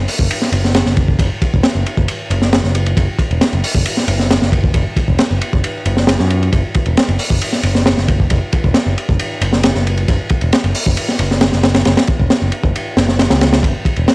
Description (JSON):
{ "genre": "breakbeat, breaks", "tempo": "135 BPM", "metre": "4/4", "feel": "straight", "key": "unclear", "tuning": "A4 = 440 Hz", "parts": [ { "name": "modern bright picked electric bass", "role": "bass", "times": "0.0-14.1 s", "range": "E1 to F#2", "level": "-16 LUFS", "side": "equal", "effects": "none" }, { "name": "crunchy breakbeat drum kit", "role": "drums", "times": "0.1-14.1 s", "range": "hi-hat, kick drum, ride cymbal, snare drum", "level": "-14 LUFS", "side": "equal", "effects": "none" } ], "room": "little or no reverb", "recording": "home recording on cassette", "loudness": "-12 LUFS", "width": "side -28 dB against mid", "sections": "0.0-14.1 A section", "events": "none", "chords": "none", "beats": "0.30 0.75 | 1.19 1.64 2.08 2.53 | 2.97 3.42 3.86 4.30 | 4.75 5.19 5.64 6.08 | 6.53 6.97 7.42 7.86 | 8.30 8.75 9.19 9.64 | 10.08 10.53 10.97 11.41 | 11.86 12.30 12.75 13.19 | 13.64 14.08" }